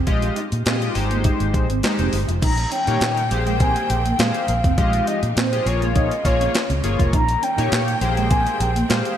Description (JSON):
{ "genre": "early-eighties boogie funk", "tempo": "102 BPM", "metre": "4/4", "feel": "straight", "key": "unclear", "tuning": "A4 = 438 Hz", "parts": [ { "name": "mellow electric guitar", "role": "riff", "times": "0.0-9.0 s", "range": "Ab3 to F4", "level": "-29 LUFS", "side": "right 5 dB", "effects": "wide subtle chorus" }, { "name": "vintage muted fingered electric bass", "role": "bass", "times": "0.0-9.0 s", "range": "F1 to Bb2", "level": "-22 LUFS", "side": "equal", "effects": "none" }, { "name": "chorused polysynth", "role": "accompaniment", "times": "0.1-9.2 s", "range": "Ab3 to Eb5", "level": "-24 LUFS", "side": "left 2 dB", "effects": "none" }, { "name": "clean 12-bit digital drum machine", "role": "drums", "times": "0.1-9.2 s", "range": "crash cymbal, handclaps, hi-hat, kick drum, snare drum", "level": "-22 LUFS", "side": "equal", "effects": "none" }, { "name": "mellow horn-like synth lead", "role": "melody", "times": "2.4-9.2 s", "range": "C5 to Bb5", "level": "-23 LUFS", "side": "equal", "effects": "chorus" }, { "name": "bright studio string section", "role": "sustained chords", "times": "2.4-9.2 s", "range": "Db3 to G5", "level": "-32 LUFS", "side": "left 2 dB", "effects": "none" } ], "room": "light reverb, digital ambience", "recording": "bright 1980s-style digital production, lossy compression artefacts", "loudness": "-17 LUFS", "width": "side -10 dB against mid", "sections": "0.0-2.4 A section; 2.4-9.2 B section", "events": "none", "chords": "0.1 Fm9/Bb; 1.0 Abmaj7; 2.4 Eb7/Bb; 3.3 Abmaj9/Bb; 4.8 Fm9/Bb; 5.7 Bbm7; 7.1 Eb7/Bb; 8.0 Abmaj9/Bb" }